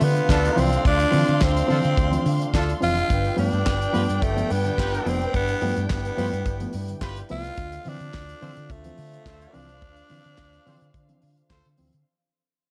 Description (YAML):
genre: disco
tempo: 107 BPM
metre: 4/4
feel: straight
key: D dorian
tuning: A4 = 439 Hz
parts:
  - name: raspy tenor saxophone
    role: melody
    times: 0.0-11.5 s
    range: A3 to F4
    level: -29 LUFS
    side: equal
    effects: none
  - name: dark studio string section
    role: second line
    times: 0.0-12.0 s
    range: D4 to C6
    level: -33 LUFS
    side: equal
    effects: none
  - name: warm French horn section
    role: sustained chords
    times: 0.0-12.0 s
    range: C3 to B4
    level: -39 LUFS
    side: equal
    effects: none
  - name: hollow-body short-scale fingered electric bass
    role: bass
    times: 0.0-12.0 s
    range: F1 to D3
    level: -28 LUFS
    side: equal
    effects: none
  - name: damped 70s drum kit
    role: drums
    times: 0.0-12.1 s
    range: handclaps, hi-hat, kick drum, snare drum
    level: -29 LUFS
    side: equal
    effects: none
  - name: reed electric piano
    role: accompaniment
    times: 0.2-11.9 s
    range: G2 to C4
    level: -31 LUFS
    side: equal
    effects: spring reverb
  - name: warm horn section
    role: stabs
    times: 0.3-11.7 s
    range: D4 to C5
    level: -34 LUFS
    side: equal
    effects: none
room: light reverb, studio ambience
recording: dark, warm production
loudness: -23 LUFS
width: mono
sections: 0.0-12.1 A section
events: fade-out 0.0-12.1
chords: 0.0 Dm7; 3.1 G7; 7.6 Dm7